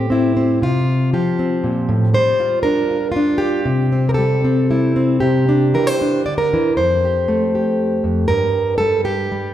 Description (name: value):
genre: folk, solo fingerstyle acoustic guitar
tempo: 118 BPM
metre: 3/4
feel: rubato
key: F major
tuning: A4 = 440 Hz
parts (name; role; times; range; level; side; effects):
- fingerpicked plugged-in steel-string acoustic guitar; solo; 0.0-9.5 s; F2 to D5; -15 LUFS; equal; none
room: wet recital hall reverb, RT60 1.6 s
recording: recorded in a church or concert hall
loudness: -15 LUFS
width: side -11 dB against mid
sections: 0.0-9.5 A section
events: none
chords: 0.0 Am7; 0.6 Csus4; 2.1 Gm7; 3.7 Cadd9; 6.8 Fadd9; 8.3 N.C.